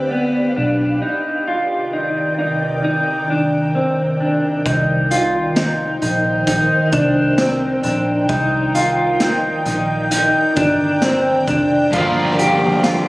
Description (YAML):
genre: dream pop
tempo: 66 BPM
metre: 4/4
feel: straight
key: C minor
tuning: A4 = 442 Hz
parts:
  - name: ethereal airy pad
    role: sustained chords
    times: 0.0-13.1 s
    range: C3 to G5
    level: -22 LUFS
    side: equal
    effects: ensemble chorus, built-in reverb, phaser
  - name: mellow electric guitar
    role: arpeggios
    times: 0.0-13.1 s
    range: B3 to G4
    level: -17 LUFS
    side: equal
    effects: analog chorus, tape echo
  - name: vintage muted fingered electric bass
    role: bass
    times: 0.0-13.1 s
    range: F1 to D2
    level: -24 LUFS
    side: equal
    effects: none
  - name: raw garage drum kit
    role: drums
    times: 4.7-13.1 s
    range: hi-hat, kick drum, snare drum, tambourine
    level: -23 LUFS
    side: equal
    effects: none
  - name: overdriven semi-hollow guitar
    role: accompaniment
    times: 11.9-13.1 s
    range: G2 to Bb4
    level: -17 LUFS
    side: equal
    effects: harmonic tremolo, lush chorus
room: moderate concert hall reverb, RT60 1.9 s, studio reverb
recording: recorded on a phone in the room, club reverb, compression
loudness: -15 LUFS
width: side -20 dB against mid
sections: 0.0-4.7 A section; 4.7-13.1 B section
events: none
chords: 0.0 G; 1.0 Ebmaj7/C; 4.7 Cm7; 11.9 Gm7